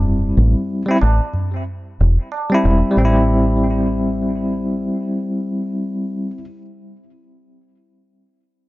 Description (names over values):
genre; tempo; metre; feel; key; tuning
trip hop; 92 BPM; 4/4; swing 59% on 16ths; A minor; A4 = 441 Hz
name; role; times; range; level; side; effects
bell-like tine electric piano; accompaniment; 0.0-6.4 s; G3 to E4; -18 LUFS; left 1 dB; tremolo, vintage 12-bit sampler grit, tape echo
deep dub fingered electric bass; bass; 0.0-4.9 s; E1 to A1; -16 LUFS; equal; none
tabla; percussion; 0.0-2.5 s; none; -24 LUFS; right 1 dB; none
room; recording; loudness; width
little or no reverb; nothing above 7.5 kHz; -16 LUFS; side -19 dB against mid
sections
0.0-3.0 A section; 3.0-5.6 B section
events
none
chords
0.0 Am7 (rootless); 3.0 Am7